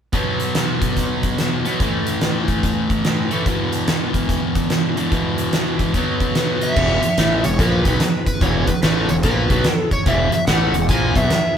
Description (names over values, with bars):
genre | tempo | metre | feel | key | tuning
blues rock power trio and southern rock | 145 BPM | 4/4 | swing 64% on 8ths | E major | A4 = 440 Hz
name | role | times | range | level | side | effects
thick fuzz guitar | riff | 0.1-11.3 s | E2 to B3 | -20 LUFS | left 1 dB | distortion
huge arena drum kit | drums | 0.1-11.4 s | crash cymbal, hi-hat, kick drum, snare drum | -20 LUFS | equal | none
overdriven slide guitar | melody | 6.6-11.5 s | B4 to G#5 | -22 LUFS | equal | none
mellow tonewheel organ | sustained chords | 6.8-11.6 s | B3 to C5 | -33 LUFS | right 4 dB | none
fuzz fingered electric bass | bass | 6.8-11.3 s | E1 to B1 | -21 LUFS | equal | overdrive
room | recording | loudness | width
light reverb | band playing live in one room, faint mains hum | -16 LUFS | side -8 dB against mid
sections
0.1-6.8 A section; 6.8-11.6 B section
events
none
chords
0.1 B5; 1.8 A5; 3.5 E5; 5.9 B5; 6.8 E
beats
| 0.14 0.55 0.97 1.39 | 1.80 2.22 2.63 3.05 | 3.46 3.88 4.29 4.70 | 5.12 5.53 5.94 6.36 | 6.77 7.18 7.59 8.00 | 8.41 8.83 9.24 9.65 | 10.06 10.48 10.89 11.30